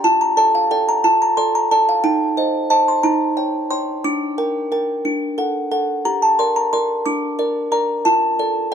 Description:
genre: classical, lullaby for music box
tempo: 60 BPM (dotted quarters)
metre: 6/8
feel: straight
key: G minor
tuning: A4 = 440 Hz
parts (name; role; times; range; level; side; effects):
- music box; solo; 0.0-8.7 s; D4 to D6; -16 LUFS; equal; none
room: light reverb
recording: dark, warm production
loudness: -16 LUFS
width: side -8 dB against mid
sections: 0.0-8.7 A section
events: none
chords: 0.0 Dm/F; 2.0 Cm/Eb; 3.0 Eb7; 4.0 Gm/D; 5.0 D; 6.0 Gm; 8.0 Dm/F

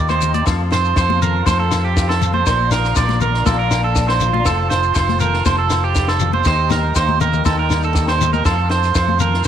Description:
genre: highlife guitar band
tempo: 120 BPM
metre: 4/4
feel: straight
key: F mixolydian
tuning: A4 = 442 Hz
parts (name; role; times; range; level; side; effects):
- picked old ladder-braced acoustic guitar; accompaniment; 0.0-9.5 s; Bb2 to Bb4; -27 LUFS; left 11 dB; cassette tape
- percussive tonewheel organ; sustained chords; 0.0-9.5 s; D5 to C6; -30 LUFS; left 2 dB; slow rotary speaker, chorus vibrato, cassette tape
- electric guitar at the edge of break-up; arpeggios; 0.0-9.5 s; F4 to D5; -18 LUFS; right 8 dB; cassette tape, analog delay
- fingered electric bass; bass; 0.0-9.4 s; F1 to F2; -19 LUFS; equal; none
- compact cocktail drum kit; drums; 0.1-9.5 s; hi-hat, kick drum, rim click, snare drum; -22 LUFS; equal; cassette tape
- agogo bells; percussion; 0.1-9.5 s; none; -29 LUFS; left 11 dB; none
- congas; percussion; 0.1-9.3 s; none; -25 LUFS; left 9 dB; none
- shekere; percussion; 0.1-9.5 s; none; -25 LUFS; left 6 dB; none
room: light reverb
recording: home recording on cassette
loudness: -14 LUFS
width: side -9 dB against mid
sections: 0.5-9.5 A section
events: none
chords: 0.5 F; 2.5 Bbadd9; 4.5 F; 6.5 Eb; 8.5 F

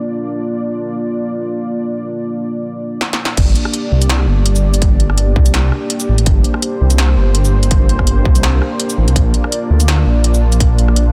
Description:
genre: half-time drum and bass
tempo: 166 BPM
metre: 4/4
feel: swing 55% on 16ths, half-time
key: G minor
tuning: A4 = 440 Hz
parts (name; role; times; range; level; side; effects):
- dark analog pad; sustained chords; 0.0-11.1 s; Bb3 to D5; -23 LUFS; equal; chorus, vintage 12-bit sampler grit, sidechain pumping
- industrial drum kit; drums; 3.0-11.0 s; crash cymbal, hi-hat, rim click, shaker, snare drum; -22 LUFS; equal; none
- dark detuned saw bass; bass; 3.4-11.1 s; G1 to D2; -15 LUFS; equal; none
- electronic kick drum; drums; 3.4-10.7 s; none; -16 LUFS; equal; distortion
room: digital ambience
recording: dense, heavily limited modern master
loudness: -15 LUFS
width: mono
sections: 0.0-3.4 A section; 3.4-11.1 B section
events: drum fill 3.0-3.4; drop 3.4-11.1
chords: 0.0 Bb; 3.4 Gm; 9.2 Bb

